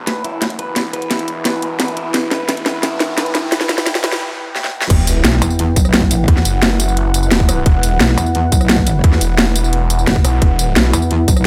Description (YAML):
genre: dark technical drum and bass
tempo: 174 BPM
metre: 4/4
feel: straight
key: E minor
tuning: A4 = 440 Hz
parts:
  - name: deep dark ambient pad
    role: sustained chords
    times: 0.3-11.5 s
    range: E4 to A5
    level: -25 LUFS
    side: equal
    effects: chorus, built-in reverb, sidechain pumping
  - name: snarling distorted saw bass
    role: bass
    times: 0.0-10.9 s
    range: E1 to E2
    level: -20 LUFS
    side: equal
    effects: distortion, overdrive, high-pass filter
  - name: riser, noise sweep and sub drop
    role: sound effects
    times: 1.7-6.3 s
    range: none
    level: -30 LUFS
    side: equal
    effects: none
  - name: electric guitar at the edge of break-up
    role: arpeggios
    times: 0.1-4.2 s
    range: E4 to B4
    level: -28 LUFS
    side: equal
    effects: sidechain pumping, low-pass filter, dub echo
  - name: drum and bass drum kit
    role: drums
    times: 0.1-11.4 s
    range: crash cymbal, hi-hat, rim click, snare drum, tambourine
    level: -19 LUFS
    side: equal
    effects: overdrive, studio reverb
  - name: electronic kick drum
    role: drums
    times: 4.9-11.3 s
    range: none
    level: -15 LUFS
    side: equal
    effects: overdrive, studio reverb
  - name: metallic wobble bass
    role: bass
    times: 5.4-11.5 s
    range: F#1 to E2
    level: -18 LUFS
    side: equal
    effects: distortion, chorus
room: light reverb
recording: high-pass filter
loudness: -15 LUFS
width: mono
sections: 0.0-4.9 A section; 4.9-11.5 B section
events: build-up 0.0-4.9; drum fill 0.0-4.2, 4.6-4.9; noise sweep 3.5-4.9; break 4.2-4.9; drop 4.9-11.5; impact 4.9-6.3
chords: 0.0 Em; 4.9 E5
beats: 0.07 0.42 | 0.76 1.11 1.45 1.80 | 2.14 2.49 2.83 3.18 | 3.52 3.87 4.21 4.55 | 4.90 5.25 5.59 5.93 | 6.28 6.62 6.97 7.31 | 7.66 8.00 8.35 8.69 | 9.04 9.38 9.73 10.07 | 10.42 10.76 11.11 11.45